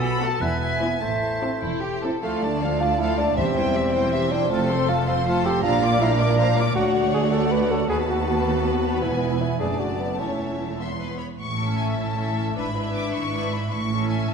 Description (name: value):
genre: classical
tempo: 104 BPM (dotted quarters)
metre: 6/8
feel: straight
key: D minor, A major from 6.8 s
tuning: A4 = 442 Hz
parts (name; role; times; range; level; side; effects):
- warm symphonic violin section; melody; 0.0-14.3 s; A4 to D6; -32 LUFS; left 4 dB; none
- bright concert flute; second line; 0.0-1.6 s; E5 to G#5; -28 LUFS; right 1 dB; none
- clear oboe; second line; 0.0-2.0 s; A4 to C5; -32 LUFS; right 2 dB; none
- dark clarinet; second line; 0.0-2.0 s; E4 to F#4; -36 LUFS; left 4 dB; none
- mellow bassoon; accompaniment; 0.0-10.8 s; A3 to B4; -25 LUFS; right 1 dB; none
- rich studio cello section; bass; 0.0-14.3 s; D2 to B2; -28 LUFS; right 2 dB; none
- warm symphonic double bass section; bass; 0.0-14.3 s; E1 to D#2; -29 LUFS; right 2 dB; none
- warm symphonic violin section; second line; 0.2-14.3 s; E4 to D6; -29 LUFS; left 2 dB; none
- warm symphonic viola section; accompaniment; 0.2-14.3 s; E3 to A4; -29 LUFS; equal; none
- mellow French horn section; sustained chords; 0.2-2.1 s; A3 to F#4; -33 LUFS; left 1 dB; none
- timpani; percussion; 3.4-3.9 s; E2; -32 LUFS; equal; none
room: wet concert hall reverb, RT60 1.8 s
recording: minimal, uncompressed stereo recording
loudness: -20 LUFS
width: side -6 dB against mid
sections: 0.0-2.2 A section; 2.2-11.4 B section; 11.4-14.3 C section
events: none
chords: 0.4 E; 1.0 Am; 2.2 Dm; 3.4 C/E; 4.5 F; 5.6 Bb; 6.8 D; 7.9 B7/D#; 9.0 E; 9.6 D/F#; 10.2 A/E; 10.8 E5; 11.4 A; 12.6 E7/G#; 13.7 A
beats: 0.41 | 1.01 1.62 | 2.23 2.80 | 3.37 3.94 | 4.51 5.08 | 5.64 6.20 | 6.76 7.33 | 7.89 8.46 | 9.02 9.60 | 10.19 10.79 | 11.39 11.97 | 12.55 13.14 | 13.71 14.29